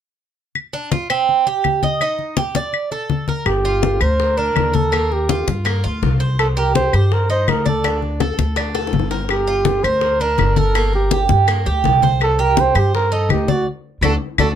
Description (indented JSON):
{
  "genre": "latin, Cuban son and guajira",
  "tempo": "165 BPM",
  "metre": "4/4",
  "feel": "straight",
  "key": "G minor",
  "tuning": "A4 = 440 Hz",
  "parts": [
    { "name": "claves", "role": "percussion", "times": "0.6-14.5 s", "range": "none", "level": "-22 LUFS", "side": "left 4 dB", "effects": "none" },
    { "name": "congas", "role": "percussion", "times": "0.6-14.5 s", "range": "none", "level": "-22 LUFS", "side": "left 6 dB", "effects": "none" },
    { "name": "Cuban tres", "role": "arpeggios", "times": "0.7-14.5 s", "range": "Bb3 to Eb5", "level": "-21 LUFS", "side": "right 6 dB", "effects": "none" },
    { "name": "trumpet with bucket mute", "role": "melody", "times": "3.5-14.5 s", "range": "F#4 to C5", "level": "-19 LUFS", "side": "right 2 dB", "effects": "none" },
    { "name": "upright bass", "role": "bass", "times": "3.5-14.5 s", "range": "G1 to G2", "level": "-19 LUFS", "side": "equal", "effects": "none" },
    { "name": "bongos", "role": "percussion", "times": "3.5-14.5 s", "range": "none", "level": "-27 LUFS", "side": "left 10 dB", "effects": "none" }
  ],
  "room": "light reverb",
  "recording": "close, detailed microphones",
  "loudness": "-15 LUFS",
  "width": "side -9 dB against mid",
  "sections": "0.5-3.5 A section; 3.5-14.6 B section",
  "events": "drum fill 8.8-9.3, 14.2-14.6; band accent 13.7-14.6",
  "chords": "0.5 Csus24; 1.3 Cm; 2.0 Eb; 2.7 D5; 3.5 Gm7; 4.9 Ebadd9; 6.4 Cm; 7.8 D5; 9.3 Gm7; 10.8 Bbsus2; 12.2 Cm; 13.7 D"
}